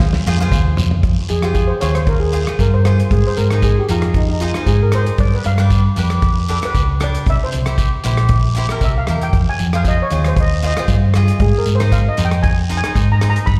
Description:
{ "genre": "calypso", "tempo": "116 BPM", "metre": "4/4", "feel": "swing 54% on 16ths", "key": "F minor", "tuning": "A4 = 435 Hz", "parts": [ { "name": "steel pan", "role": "melody", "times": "0.0-13.6 s", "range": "Eb4 to B5", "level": "-24 LUFS", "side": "equal", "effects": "slapback echo" }, { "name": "cavaquinho", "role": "accompaniment", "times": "0.0-13.5 s", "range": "D4 to Eb5", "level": "-28 LUFS", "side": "equal", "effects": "slapback echo" }, { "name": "hollow-body short-scale fingered electric bass", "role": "bass", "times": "0.0-13.6 s", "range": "Bb1 to Ab2", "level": "-18 LUFS", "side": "equal", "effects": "none" }, { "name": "warm soul drum kit", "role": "drums", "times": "0.0-13.6 s", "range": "hi-hat, kick drum, rim click, snare drum, toms", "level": "-21 LUFS", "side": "equal", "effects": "none" }, { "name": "guiro", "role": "percussion", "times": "0.0-13.6 s", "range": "none", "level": "-34 LUFS", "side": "equal", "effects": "slapback echo" } ], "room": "small room ambience", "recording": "live gig heard through the venue's PA, recital hall reverb", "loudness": "-16 LUFS", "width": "mono", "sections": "0.0-1.0 A section; 1.0-13.6 B section", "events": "drum fill 0.0-1.0; steel pan solo 1.0-13.6", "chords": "0.0 Fm7; 1.0 Fm; 3.1 Ab; 5.2 G7; 7.3 C; 9.3 Fm7; 11.4 Ab" }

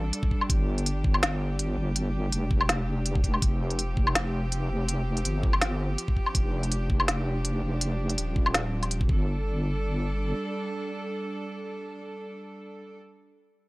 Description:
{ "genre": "half-time drum and bass", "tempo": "164 BPM", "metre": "4/4", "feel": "swing 54% on 16ths, half-time", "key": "unclear", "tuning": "A4 = 440 Hz", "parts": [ { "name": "rich studio cello section", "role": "sustained chords", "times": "0.0-13.0 s", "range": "F3 to A4", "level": "-35 LUFS", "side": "right 1 dB", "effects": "sidechain pumping" }, { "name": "deep soft wobble bass", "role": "bass", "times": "0.0-10.3 s", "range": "Eb1 to A1", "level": "-28 LUFS", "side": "equal", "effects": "chorus" }, { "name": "organic electronic drum kit", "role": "drums", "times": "0.1-9.0 s", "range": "hi-hat, snare drum, woodblock", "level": "-27 LUFS", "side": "equal", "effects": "none" }, { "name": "electronic kick drum", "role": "drums", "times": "0.2-9.2 s", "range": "none", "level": "-25 LUFS", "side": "equal", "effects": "none" } ], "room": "little or no reverb", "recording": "dry, gritty hardware recording", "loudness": "-25 LUFS", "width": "side -22 dB against mid", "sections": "0.0-9.3 A section; 9.3-12.2 B section", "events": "drop 0.0-9.3", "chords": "0.0 Gsus2; 3.4 F5; 9.1 Gsus2" }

